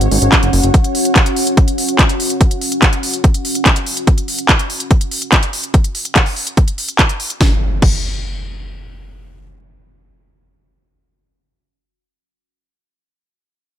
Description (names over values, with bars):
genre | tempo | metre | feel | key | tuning
psychedelic trance | 144 BPM | 4/4 | straight | unclear | A4 = 435 Hz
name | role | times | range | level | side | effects
swarming drone | sustained chords | 0.0-0.7 s | C#5 | -30 LUFS | right 1 dB | built-in reverb, phaser, vintage 12-bit sampler grit, sidechain pumping
fat analog bass | bass | 0.0-0.7 s | F#1 to G#1 | -14 LUFS | equal | none
techno drum kit | drums | 0.0-7.9 s | crash cymbal, handclaps, hi-hat, snare drum | -17 LUFS | equal | overdrive
deep dark ambient pad | texture | 0.0-4.1 s | C#4 to F#5 | -20 LUFS | equal | chorus, built-in reverb, sidechain pumping
electronic kick drum | drums | 0.3-7.9 s | none | -12 LUFS | equal | overdrive
impact | sound effects | 7.4-11.5 s | none | -21 LUFS | equal | none
room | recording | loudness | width
little or no reverb | none | -12 LUFS | side -10 dB against mid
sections
0.0-7.4 A section; 7.4-10.7 B section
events
none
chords
0.0 F#5; 7.4 N.C.